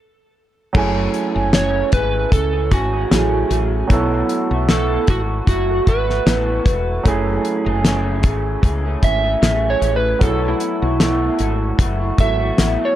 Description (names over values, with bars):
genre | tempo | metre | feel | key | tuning
indie pop, bedroom pop | 76 BPM | 4/4 | swing 55% on 16ths | F# minor | A4 = 440 Hz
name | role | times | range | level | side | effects
electric guitar through a small old amp | accompaniment | 0.7-13.0 s | F#2 to G#4 | -24 LUFS | left 1 dB | analog chorus, vibrato effect
warm upright piano | accompaniment | 0.7-13.0 s | F#3 to G#5 | -24 LUFS | right 4 dB | none
damped 70s drum kit | drums | 0.7-12.8 s | crash cymbal, hi-hat, kick drum, snare drum | -17 LUFS | left 1 dB | none
woody fretless electric bass | bass | 0.8-12.8 s | E1 to C#2 | -21 LUFS | equal | none
electric slide guitar | melody | 1.5-13.0 s | E4 to E5 | -21 LUFS | right 2 dB | wide subtle chorus
room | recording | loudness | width
light reverb | cassette tape | -15 LUFS | side -12 dB against mid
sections
0.7-13.0 A section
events
stop 0.0-0.7; electric slide guitar solo 0.7-13.0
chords
0.0 N.C.; 0.7 F#m9; 3.9 B7sus4; 7.1 F#m9; 10.2 B7sus4